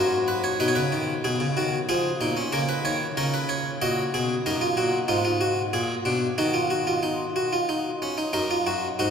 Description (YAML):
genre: classical, baroque-style 3-part fugue for harpsichord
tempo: 93 BPM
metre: 3/4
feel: straight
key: Eb minor from 4.5 s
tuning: A4 = 440 Hz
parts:
  - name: harpsichord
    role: solo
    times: 0.0-9.1 s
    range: F#2 to D#5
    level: -22 LUFS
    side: equal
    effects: none
room: wet cathedral reverb, RT60 6.0 s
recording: recorded in a church or concert hall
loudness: -22 LUFS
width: side -7 dB against mid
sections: 0.6-8.3 A section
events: none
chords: 0.0 F#; 0.6 G#m/B; 1.9 A#m7; 2.5 A#m/C#; 3.8 F#/A#; 4.5 Ebm/Gb; 5.1 Ab5; 5.7 Bb7; 6.4 Ebm; 8.3 Ebm/Gb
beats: | 0.60 1.25 1.89 | 2.53 3.18 3.82 | 4.45 5.08 5.72 | 6.38 7.03 7.69 | 8.34 8.98